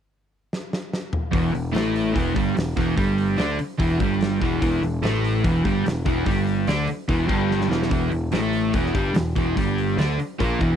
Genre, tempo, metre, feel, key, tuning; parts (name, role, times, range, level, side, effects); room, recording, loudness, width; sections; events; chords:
blues rock power trio and southern rock; 146 BPM; 4/4; straight; E minor; A4 = 438 Hz
big rock drum kit; drums; 0.5-10.7 s; hi-hat, kick drum, snare drum, toms; -27 LUFS; equal
crunchy overdriven guitar; riff; 1.3-10.8 s; E2 to D4; -22 LUFS; right 1 dB
overdriven picked electric bass; bass; 1.3-10.8 s; E1 to D2; -26 LUFS; left 1 dB
little or no reverb; dry, close 1970s-style studio recording; -20 LUFS; side -9 dB against mid
0.0-1.3 A section; 1.3-10.8 B section
drum fill 0.5-1.3, 7.5-7.9
0.0 N.C.; 1.3 Em